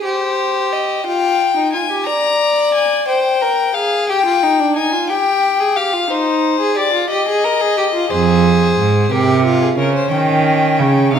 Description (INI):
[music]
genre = classical, baroque-style fugue for string quartet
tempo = 60 BPM (dotted quarters)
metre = 12/8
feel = straight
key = unclear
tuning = A4 = 439 Hz
[part]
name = rich violin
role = second line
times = 0.0-11.2 s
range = Db4 to D5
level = -17 LUFS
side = left 1 dB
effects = none
[part]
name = rich violin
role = melody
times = 0.1-11.2 s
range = Ab4 to Bb5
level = -17 LUFS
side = left 6 dB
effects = none
[part]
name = rich cello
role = bass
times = 8.1-11.2 s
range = F2 to Eb3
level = -14 LUFS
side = right 5 dB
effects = none
[sound]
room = moderate scoring stage reverb, RT60 1.6 s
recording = minimal, uncompressed stereo recording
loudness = -13 LUFS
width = side -8 dB against mid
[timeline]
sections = 0.0-11.2 A section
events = none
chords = 0.1 Cm/G; 2.1 Bb/D; 4.1 G5; 6.1 Cm/Eb; 8.1 Fm; 10.1 Eb